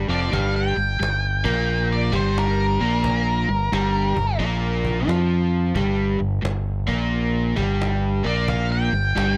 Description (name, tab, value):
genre	blues rock power trio and southern rock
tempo	88 BPM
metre	4/4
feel	swing 66% on 8ths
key	G minor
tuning	A4 = 441 Hz
part	overdriven electric guitar	riff	0.0-9.4 s	F2 to F4	-26 LUFS	equal	none
part	growling fingered electric bass	bass	0.0-9.4 s	F1 to F2	-26 LUFS	equal	overdrive
part	octave-fuzz lead guitar	melody	0.1-9.4 s	Bb4 to G5	-28 LUFS	equal	distortion
part	cajon	drums	0.1-9.4 s	none	-33 LUFS	equal	none
room	digital ambience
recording	none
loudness	-22 LUFS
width	mono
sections	0.0-9.4 A section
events	none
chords	0.0 Gm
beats	| 0.33 1.01 1.69 2.36 | 3.04 3.72 4.40 5.08 | 5.76 6.44 7.12 7.80 | 8.48 9.16